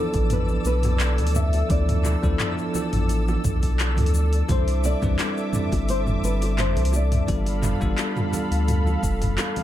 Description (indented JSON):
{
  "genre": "sunset chillout",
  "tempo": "86 BPM",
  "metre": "4/4",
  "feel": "straight",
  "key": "D dorian",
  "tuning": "A4 = 440 Hz",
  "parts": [
    { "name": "nylon-string guitar", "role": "melody", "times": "0.0-9.3 s", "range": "A4 to E5", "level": "-30 LUFS", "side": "left 2 dB", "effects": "analog delay" },
    { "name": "bell-like tine electric piano", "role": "accompaniment", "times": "0.0-9.6 s", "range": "F3 to D5", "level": "-28 LUFS", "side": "equal", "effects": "auto-pan, analog delay" },
    { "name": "lush unison pad", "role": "sustained chords", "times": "0.0-9.6 s", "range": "A4 to E6", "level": "-32 LUFS", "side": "left 1 dB", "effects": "chorus" },
    { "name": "twinkling granular texture", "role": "texture", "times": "0.0-9.6 s", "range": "D5 to E6", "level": "-39 LUFS", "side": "right 1 dB", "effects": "built-in reverb" },
    { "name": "warm sub bass", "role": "bass", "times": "0.1-9.4 s", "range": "F1 to D2", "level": "-22 LUFS", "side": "equal", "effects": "none" },
    { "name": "deep house drum kit", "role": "drums", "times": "0.1-9.6 s", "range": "handclaps, hi-hat, shaker, toms", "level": "-28 LUFS", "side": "equal", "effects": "overdrive" },
    { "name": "electronic kick drum", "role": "drums", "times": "0.1-9.3 s", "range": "none", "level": "-26 LUFS", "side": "equal", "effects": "overdrive" },
    { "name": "bongos and congas", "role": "percussion", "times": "0.3-9.6 s", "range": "none", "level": "-35 LUFS", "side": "right 2 dB", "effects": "none" }
  ],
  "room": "light reverb, digital ambience",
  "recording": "echo-heavy mix",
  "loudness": "-20 LUFS",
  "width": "side -12 dB against mid",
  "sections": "0.0-9.6 A section",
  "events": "none",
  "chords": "0.0 Dm69; 4.5 Cmaj9; 7.3 G9"
}